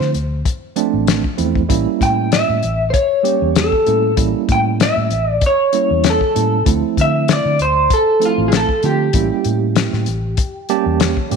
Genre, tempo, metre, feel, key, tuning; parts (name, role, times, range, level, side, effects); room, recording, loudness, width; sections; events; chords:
straight-eighth soul blues; 97 BPM; 4/4; swing 54% on 16ths; A4 = 439 Hz
electric guitar through a small old amp; melody; 0.0-11.0 s; F4 to G5; -17 LUFS; equal; analog chorus
bright tine electric piano; accompaniment; 0.0-11.4 s; F3 to A5; -19 LUFS; right 13 dB; medium stereo tremolo
vintage muted fingered electric bass; bass; 0.0-11.4 s; A1 to D3; -20 LUFS; left 1 dB
warm soul drum kit; drums; 0.0-11.4 s; hi-hat, kick drum, snare drum; -18 LUFS; left 4 dB
moderate echo chamber reverb, RT60 1.6 s, small room reverb; 1960s-style stereo; -14 LUFS; side -5 dB against mid
0.0-11.4 A section
tine electric piano fill 10.4-11.4
0.0 Dm9; 1.7 A7b9; 6.7 Dm9; 9.1 A7b9